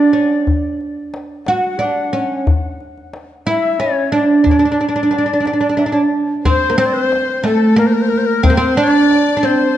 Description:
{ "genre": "Persian modal ensemble", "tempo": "60 BPM (dotted quarters)", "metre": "6/8", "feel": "straight", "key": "D dastgah mahur", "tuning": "A4 = 438 Hz", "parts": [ { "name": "oud", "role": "melody", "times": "0.0-9.8 s", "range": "A3 to F#4", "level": "-14 LUFS", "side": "right 2 dB", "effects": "none" }, { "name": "breathy bright ney", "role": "second line", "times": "0.0-9.8 s", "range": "A4 to F#5", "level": "-20 LUFS", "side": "left 6 dB", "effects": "tape echo" }, { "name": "tombak", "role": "percussion", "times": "0.5-9.6 s", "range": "none", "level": "-18 LUFS", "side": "left 2 dB", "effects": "none" }, { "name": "warm chamber violin section", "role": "second line", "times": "6.5-9.8 s", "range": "A4 to D5", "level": "-23 LUFS", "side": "left 3 dB", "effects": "none" } ], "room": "wet recital hall reverb, RT60 1.4 s", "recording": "dark, warm production, nothing above 10.7 kHz", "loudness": "-12 LUFS", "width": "side -12 dB against mid", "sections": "0.0-6.5 A section; 6.5-9.8 B section", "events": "none", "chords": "none" }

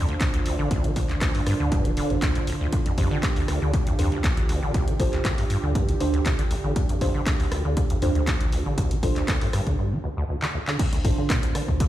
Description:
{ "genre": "acid house", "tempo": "119 BPM", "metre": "4/4", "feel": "straight", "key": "D minor", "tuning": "A4 = 441 Hz", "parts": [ { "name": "warm analog pad", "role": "sustained chords", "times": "0.0-11.9 s", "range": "D3 to C5", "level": "-31 LUFS", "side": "right 3 dB", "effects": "chorus, sidechain pumping" }, { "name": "deep acid bass", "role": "riff", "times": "0.0-11.8 s", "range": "D1 to F3", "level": "-27 LUFS", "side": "equal", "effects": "overdrive, wide subtle chorus, sidechain pumping" }, { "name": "warm sub bass", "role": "bass", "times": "0.0-11.9 s", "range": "D1 to D2", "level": "-27 LUFS", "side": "equal", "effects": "sidechain pumping" }, { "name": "punchy analog drum machine", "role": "drums", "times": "0.1-11.9 s", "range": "crash cymbal, handclaps, hi-hat, rim click", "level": "-32 LUFS", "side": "left 1 dB", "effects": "none" }, { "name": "electronic kick drum", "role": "drums", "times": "0.2-11.9 s", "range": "none", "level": "-25 LUFS", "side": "equal", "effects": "none" }, { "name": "deep mellow chord stab", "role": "stabs", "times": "3.0-11.2 s", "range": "D4 to C5", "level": "-32 LUFS", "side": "right 1 dB", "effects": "wide subtle chorus, ping-pong delay" }, { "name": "granular cloud pad", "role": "texture", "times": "11.4-11.9 s", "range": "D4", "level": "-42 LUFS", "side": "right 8 dB", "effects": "none" } ], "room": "light reverb, digital ambience", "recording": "played on a big sound system in a bare room, stone room reverb", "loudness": "-21 LUFS", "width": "side -13 dB against mid", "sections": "0.0-10.8 A section; 10.8-11.9 B section", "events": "break 9.8-10.8; drum fill 10.4-10.8; drop 10.8-11.9", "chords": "0.0 Dm7" }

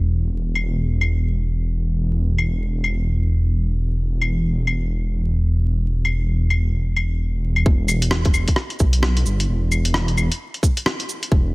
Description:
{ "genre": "future garage", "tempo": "131 BPM", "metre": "4/4", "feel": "swing 60% on 16ths", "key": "E minor", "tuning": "A4 = 440 Hz", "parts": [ { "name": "dark detuned saw bass", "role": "bass", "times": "0.0-11.5 s", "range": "E1 to B1", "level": "-19 LUFS", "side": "equal", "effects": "sidechain pumping" }, { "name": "lo-fi sampler-style drum kit", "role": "drums", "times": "0.6-11.3 s", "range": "cabasa, claves, hi-hat, rim click", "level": "-23 LUFS", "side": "left 1 dB", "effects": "small room reverb" }, { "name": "electronic kick drum", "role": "drums", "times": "7.7-11.4 s", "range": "none", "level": "-17 LUFS", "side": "equal", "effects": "small room reverb" } ], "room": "digital ambience", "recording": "vinyl crackle", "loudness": "-18 LUFS", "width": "side -24 dB against mid", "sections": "0.0-7.7 A section; 7.7-11.5 B section", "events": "none", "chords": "none" }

